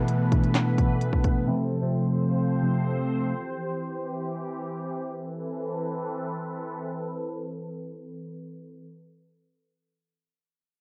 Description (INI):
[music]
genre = hip hop, trap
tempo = 130 BPM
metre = 4/4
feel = half-time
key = A minor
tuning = A4 = 440 Hz
[part]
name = mellow tine electric piano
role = accompaniment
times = 0.0-3.3 s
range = B2 to D4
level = -26 LUFS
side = equal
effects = phaser, low-pass filter, cassette tape
[part]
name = sweeping resonant pad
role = sustained chords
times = 0.0-8.9 s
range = E3 to C5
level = -35 LUFS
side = equal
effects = chorus, low-pass filter, cassette tape
[part]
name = downlifter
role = sound effects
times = 0.0-1.5 s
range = none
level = -51 LUFS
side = equal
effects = none
[part]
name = trap drum kit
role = drums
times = 0.1-1.3 s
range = handclaps, hi-hat, kick drum, snare drum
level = -28 LUFS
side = equal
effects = none
[sound]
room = light reverb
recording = home recording on cassette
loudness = -28 LUFS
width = mono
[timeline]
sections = 0.0-5.2 A section; 5.2-8.9 B section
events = filter sweep 0.0-5.2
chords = 0.0 Esus4; 1.5 F; 3.3 C; 5.2 Amadd9